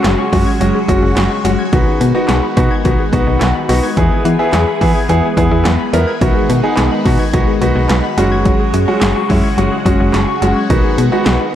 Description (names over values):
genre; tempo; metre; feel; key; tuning
synth-pop; 107 BPM; 4/4; straight; unclear; A4 = 440 Hz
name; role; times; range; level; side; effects
clear concert grand piano; accompaniment; 0.0-11.4 s; G#3 to A#4; -16 LUFS; right 1 dB; tape echo
phased string machine; sustained chords; 0.0-11.6 s; C#3 to G#4; -20 LUFS; equal; ensemble chorus, phaser
warbly dusty pluck; arpeggios; 0.0-11.5 s; D#3 to G#6; -21 LUFS; left 9 dB; chorus, tape echo
slap-like FM bass; bass; 0.0-11.4 s; F#1 to E3; -16 LUFS; equal; none
punchy analog drum machine; drums; 0.0-11.4 s; handclaps, hi-hat, kick drum, snare drum; -17 LUFS; equal; overdrive, tape echo
room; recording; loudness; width
moderate spring reverb, RT60 2.3 s; echo-heavy mix; -11 LUFS; side -11 dB against mid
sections
0.0-11.6 A section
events
none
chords
0.0 F#sus2; 1.7 B6; 4.0 E; 6.2 B6; 8.2 F#sus2; 10.7 B6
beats
0.05 0.61 1.17 | 1.73 2.29 2.85 3.41 | 3.97 4.53 5.09 5.65 | 6.21 6.78 7.34 7.90 | 8.46 9.02 9.58 10.14 | 10.70 11.26